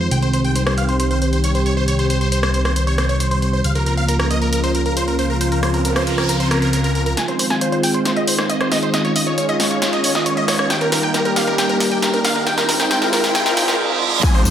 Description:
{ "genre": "uplifting trance", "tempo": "136 BPM", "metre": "4/4", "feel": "straight", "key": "F minor", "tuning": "A4 = 440 Hz", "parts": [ { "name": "big supersaw lead", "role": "melody", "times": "0.0-14.5 s", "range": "Bb4 to Ab5", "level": "-22 LUFS", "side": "equal", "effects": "phaser, sidechain pumping, low-pass filter, diffuse ambient delay" }, { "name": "lush unison pad", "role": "sustained chords", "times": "0.0-14.5 s", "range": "Db3 to G4", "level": "-20 LUFS", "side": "equal", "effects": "chorus, sidechain pumping" }, { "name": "fat analog bass", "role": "bass", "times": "0.0-7.2, 14.5 s", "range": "C2 to F2", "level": "-20 LUFS", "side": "equal", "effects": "sidechain pumping" }, { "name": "punchy analog drum machine", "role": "drums", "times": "0.1-14.5 s", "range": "crash cymbal, hi-hat, rim click, snare drum, tambourine", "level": "-22 LUFS", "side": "equal", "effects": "overdrive, sidechain pumping on hats, high-pass filter on hats, high-pass filter on snare, sidechain pumping on cymbals, high-pass filter on cymbals, sidechain pumping on perc, high-pass filter on perc, high-pass filter on room" }, { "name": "noise sweep, riser, reverse cymbal and downlifter", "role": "sound effects", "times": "5.7-14.5 s", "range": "none", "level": "-25 LUFS", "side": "right 3 dB", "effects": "none" }, { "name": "wide unison pluck", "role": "second line", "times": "7.2-14.5 s", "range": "Bb4 to Ab5", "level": "-24 LUFS", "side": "equal", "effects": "sidechain pumping, diffuse ambient delay" }, { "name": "electronic kick drum", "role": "drums", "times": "14.2-14.3 s", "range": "none", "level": "-14 LUFS", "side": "equal", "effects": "overdrive" } ], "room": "wet plate reverb, RT60 1.4 s, digital ambience", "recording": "dreamy mix soaked in reverb, high-pass filter", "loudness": "-15 LUFS", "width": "side -9 dB against mid", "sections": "0.0-7.2 A section; 7.2-14.2 B section", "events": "filter sweep on analog synth pad 0.0-7.2; noise sweep 5.7-7.2; build-up 7.2-14.2; drum fill 7.2-13.8; filter sweep on synth pluck 7.2-14.2; reverse cymbal 13.3-14.2", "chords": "0.1 Cm; 3.6 Bbm/Db; 7.2 Fm7; 8.9 Dbadd9; 10.7 Eb; 12.5 Fm7" }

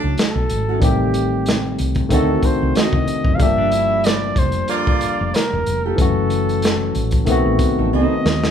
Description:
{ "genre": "R&B, neo-soul", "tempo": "93 BPM", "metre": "4/4", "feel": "swing 55% on 16ths", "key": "unclear", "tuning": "A4 = 440 Hz", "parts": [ { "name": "warm flugelhorn", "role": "melody", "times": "0.0-8.5 s", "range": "G4 to F5", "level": "-22 LUFS", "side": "equal", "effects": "none" }, { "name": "barky tine electric piano", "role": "accompaniment", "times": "0.0-8.5 s", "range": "Eb3 to G4", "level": "-21 LUFS", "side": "left 2 dB", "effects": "overdrive" }, { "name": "warm horn section", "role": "stabs", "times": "0.0-5.5 s", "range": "A2 to F4", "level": "-25 LUFS", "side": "right 4 dB", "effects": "none" }, { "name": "woody fretless electric bass", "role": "bass", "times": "0.0-8.5 s", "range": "E1 to D#2", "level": "-22 LUFS", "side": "equal", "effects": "none" }, { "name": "crunchy breakbeat drum kit", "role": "drums", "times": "0.2-8.5 s", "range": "hi-hat, kick drum, snare drum", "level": "-20 LUFS", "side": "equal", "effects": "none" }, { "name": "nylon-string guitar", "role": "second line", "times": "0.7-8.1 s", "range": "A3 to A4", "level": "-24 LUFS", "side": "right 5 dB", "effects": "none" } ], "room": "light reverb", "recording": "band playing live in one room", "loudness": "-15 LUFS", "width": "side -8 dB against mid", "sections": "0.0-8.5 A section", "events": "drum fill 7.9-8.5", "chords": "0.0 Dmaj7; 0.8 Am7b5; 2.1 D7b9; 3.4 Gm7; 6.0 F#m7; 7.3 B7b9" }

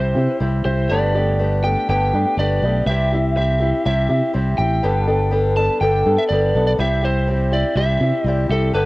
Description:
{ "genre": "folk rock and heartland rock", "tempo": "122 BPM", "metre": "4/4", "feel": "straight", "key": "C major", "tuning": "A4 = 442 Hz", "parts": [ { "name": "lightly driven lead guitar", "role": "melody", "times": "0.0-8.9 s", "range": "A4 to A5", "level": "-22 LUFS", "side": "right 1 dB", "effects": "analog delay" }, { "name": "picked old ladder-braced acoustic guitar", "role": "accompaniment", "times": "0.0-8.9 s", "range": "G2 to A4", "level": "-21 LUFS", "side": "left 1 dB", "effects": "cassette tape" }, { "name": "fingered electric bass", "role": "bass", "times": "0.0-8.9 s", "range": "G1 to C3", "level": "-19 LUFS", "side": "equal", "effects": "none" } ], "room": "small room ambience", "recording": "home recording on cassette", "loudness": "-16 LUFS", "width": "side -20 dB against mid", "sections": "0.0-8.9 A section", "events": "none", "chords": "0.0 C; 0.9 Gadd9; 2.9 C; 4.8 Gadd9; 6.8 C" }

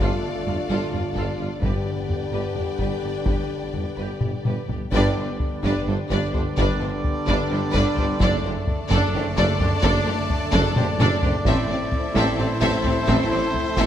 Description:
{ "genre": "cinematic, epic orchestral film score", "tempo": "258 BPM (eighths)", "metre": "7/8", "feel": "straight", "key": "G mixolydian, G major from 4.9 s", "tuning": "A4 = 441 Hz", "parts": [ { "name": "warm symphonic violin section", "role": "melody", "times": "0.0-13.9 s", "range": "C5 to E5", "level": "-32 LUFS", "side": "left 4 dB", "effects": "none" }, { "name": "warm symphonic violin section", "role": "second line", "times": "0.0-13.9 s", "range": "D4 to B4", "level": "-33 LUFS", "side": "left 3 dB", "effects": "none" }, { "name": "rich symphonic viola section", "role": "accompaniment", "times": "0.0-13.9 s", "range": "C4 to G4", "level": "-30 LUFS", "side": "equal", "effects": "none" }, { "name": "clear trombone section", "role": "sustained chords", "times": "0.0-13.9 s", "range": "A2 to B3", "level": "-34 LUFS", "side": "right 2 dB", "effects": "none" }, { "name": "dark French horn section", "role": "sustained chords", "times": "0.0-13.9 s", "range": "A3 to G4", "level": "-31 LUFS", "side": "left 3 dB", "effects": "none" }, { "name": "warm symphonic string section", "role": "sustained chords", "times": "0.0-13.9 s", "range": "D4 to A5", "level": "-33 LUFS", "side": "left 3 dB", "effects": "none" }, { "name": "rich symphonic cello section", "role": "bass", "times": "0.0-13.8 s", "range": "F#2 to A2", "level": "-28 LUFS", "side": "right 2 dB", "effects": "none" }, { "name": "warm symphonic double bass section", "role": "bass", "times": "0.0-13.8 s", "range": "F#1 to A1", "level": "-29 LUFS", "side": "right 2 dB", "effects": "none" }, { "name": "warm tuba", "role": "bass", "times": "0.0-13.9 s", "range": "F#1 to A1", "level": "-30 LUFS", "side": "right 3 dB", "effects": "none" }, { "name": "taiko ensemble", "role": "drums", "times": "0.0-13.9 s", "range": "none", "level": "-26 LUFS", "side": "left 1 dB", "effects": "none" }, { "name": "timpani", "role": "percussion", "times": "1.6-2.3 s", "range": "G2", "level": "-30 LUFS", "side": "left 2 dB", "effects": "none" }, { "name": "clear trumpet section", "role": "stabs", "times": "4.9-13.9 s", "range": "C5 to D5", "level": "-30 LUFS", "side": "right 2 dB", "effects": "none" } ], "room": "wet scoring stage reverb, RT60 1.8 s", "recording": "none", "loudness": "-20 LUFS", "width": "side -10 dB against mid", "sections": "0.0-4.9 A section; 4.9-13.9 B section", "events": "drum fill 4.2-4.9, 10.8-11.5; band accent 4.9-5.4", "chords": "0.0 Dm/G; 1.6 G; 8.2 D/F#; 11.5 Am" }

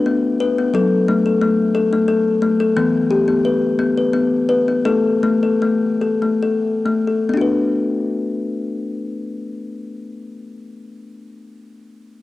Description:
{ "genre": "world meditative", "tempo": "66-89 BPM", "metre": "3/4", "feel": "straight", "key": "B minor", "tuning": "A4 = 441 Hz", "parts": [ { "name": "kalimba", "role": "solo", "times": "0.0-10.4 s", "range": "E3 to B4", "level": "-16 LUFS", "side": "left 2 dB", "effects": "cassette tape" } ], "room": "moderate spring reverb, RT60 2.8 s", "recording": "home recording on cassette", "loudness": "-15 LUFS", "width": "side -16 dB against mid", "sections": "0.0-7.3 A section; 7.3-12.2 B section", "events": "slowing down 2.8-7.3", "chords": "0.0 N.C.; 0.7 F#m; 2.8 E5; 4.9 N.C.; 7.3 Bm" }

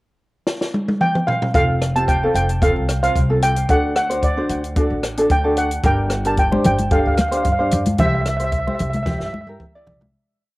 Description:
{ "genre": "calypso", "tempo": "112 BPM", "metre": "4/4", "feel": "straight", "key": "F major", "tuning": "A4 = 441 Hz", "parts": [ { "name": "compact cocktail drum kit", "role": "drums", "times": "0.5-10.1 s", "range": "hi-hat, kick drum, rim click, snare drum, toms", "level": "-22 LUFS", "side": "equal", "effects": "none" }, { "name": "steel pan", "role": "melody", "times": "1.0-9.5 s", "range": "D5 to A5", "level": "-21 LUFS", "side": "right 1 dB", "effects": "tape echo" }, { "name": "ukulele", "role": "accompaniment", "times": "1.5-10.0 s", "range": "C4 to D5", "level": "-22 LUFS", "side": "equal", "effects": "cassette tape" }, { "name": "upright bass", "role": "bass", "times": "1.5-10.1 s", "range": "F1 to G2", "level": "-23 LUFS", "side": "equal", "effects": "none" }, { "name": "congas", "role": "percussion", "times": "6.5-10.1 s", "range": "none", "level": "-20 LUFS", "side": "left 1 dB", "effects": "none" } ], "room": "moderate spring reverb, RT60 1.5 s, small room ambience", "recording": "home recording on cassette", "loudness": "-16 LUFS", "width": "side -19 dB against mid", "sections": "0.0-1.5 pickup bar; 1.5-10.1 verse", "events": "drum fill 0.5-1.5, 9.1-10.1; fade-out 8.0-10.1", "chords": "0.0 N.C.; 1.5 Fadd9; 3.7 D7; 5.8 Gm; 8.0 C" }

